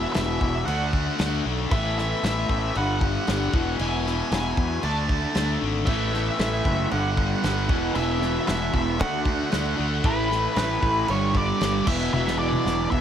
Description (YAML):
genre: quiet-loud alternative rock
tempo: 115 BPM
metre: 4/4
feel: straight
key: unclear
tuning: A4 = 440 Hz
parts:
  - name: octave-fuzz lead guitar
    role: melody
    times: 0.0-13.0 s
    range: B4 to A5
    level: -29 LUFS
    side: right 1 dB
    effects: distortion
  - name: clear studio string section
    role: sustained chords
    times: 0.0-13.0 s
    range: F#3 to E5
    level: -40 LUFS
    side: left 2 dB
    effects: none
  - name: overdriven electric guitar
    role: riff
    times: 0.0-13.0 s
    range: E2 to D4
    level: -30 LUFS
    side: left 7 dB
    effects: phaser
  - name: overdriven electric guitar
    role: riff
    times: 0.0-13.0 s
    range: E2 to D4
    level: -30 LUFS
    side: equal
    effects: none
  - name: fuzz fingered electric bass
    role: bass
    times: 0.0-13.0 s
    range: E1 to E2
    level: -28 LUFS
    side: equal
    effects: overdrive
  - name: loose indie drum kit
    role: drums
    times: 0.1-13.0 s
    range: crash cymbal, kick drum, snare drum, toms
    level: -28 LUFS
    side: equal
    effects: none
  - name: overdriven electric guitar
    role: riff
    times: 5.9-13.0 s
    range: E2 to D4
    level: -29 LUFS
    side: right 6 dB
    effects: none
room: light reverb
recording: none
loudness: -21 LUFS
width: side -9 dB against mid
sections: 0.0-13.0 A section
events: drum fill 12.1-13.0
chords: 0.0 Eadd9; 0.7 D; 1.7 Asus2; 2.8 G; 3.5 Eadd9; 4.8 D; 5.9 Asus2; 6.9 G; 7.7 Eadd9; 9.0 D; 10.0 Asus2; 11.1 G; 11.9 Eadd9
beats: 0.15 0.67 1.19 | 1.71 2.23 2.75 3.27 | 3.79 4.31 4.83 5.35 | 5.88 6.39 6.92 7.44 | 7.96 8.48 9.00 9.52 | 10.04 10.56 11.09 11.61 | 12.13 12.65